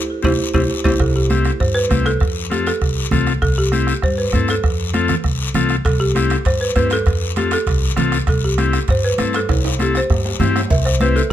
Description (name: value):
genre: latin, cumbia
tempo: 198 BPM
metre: 4/4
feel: straight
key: C major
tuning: A4 = 440 Hz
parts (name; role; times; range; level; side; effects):
- folk marimba with medium mallets; melody; 0.2-11.3 s; E4 to E5; -21 LUFS; right 1 dB; tape echo
- combo organ; accompaniment; 0.2-11.2 s; C4 to A4; -22 LUFS; left 7 dB; none
- upright bass; bass; 0.2-11.3 s; C2 to G2; -20 LUFS; equal; none
- bombo; percussion; 0.2-11.2 s; none; -21 LUFS; right 2 dB; none
- congas; percussion; 0.2-11.3 s; none; -25 LUFS; right 1 dB; none
- guiro; percussion; 0.2-11.3 s; none; -29 LUFS; left 7 dB; none
- timbales and cowbell; percussion; 0.2-0.9, 5.9-10.9 s; none; -30 LUFS; right 5 dB; none
room: little or no reverb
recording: close, detailed microphones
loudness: -15 LUFS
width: side -11 dB against mid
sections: 1.0-10.7 A section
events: band accent 0.0-1.0; drum fill 0.5-1.0, 9.5-10.7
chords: 0.0 C; 2.2 F; 3.4 C; 4.6 F; 5.9 C; 7.1 F; 8.3 C